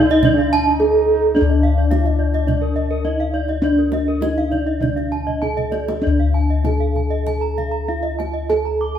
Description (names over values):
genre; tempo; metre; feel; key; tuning
Balinese gamelan; 97-109 BPM; 4/4; straight; D pelog; A4 = 437 Hz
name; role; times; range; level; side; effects
gamelan-type bronze metallophone; melody; 0.0-9.0 s; D4 to A4-30c; -20 LUFS; right 2 dB; none
breathy flugelhorn; second line; 0.0-3.4 s; D4 to A4-30c; -31 LUFS; right 4 dB; none
gamelan-type bronze metallophone; arpeggios; 0.0-9.0 s; Bb4-20c to D6; -26 LUFS; right 1 dB; none
gamelan-type bossed gongs; bass; 0.0-9.0 s; D2 to A4-30c; -19 LUFS; left 2 dB; none
gamelan-type bronze metallophone; arpeggios; 0.1-9.0 s; Eb5+20c to Bb5-20c; -25 LUFS; right 2 dB; none
kendang; percussion; 0.1-8.9 s; none; -26 LUFS; right 3 dB; none
room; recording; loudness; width
wet stone room reverb, RT60 1.2 s; band playing live in one room; -16 LUFS; side -9 dB against mid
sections
0.0-6.0 A section; 6.0-9.0 B section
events
drum fill 5.3-6.0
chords
none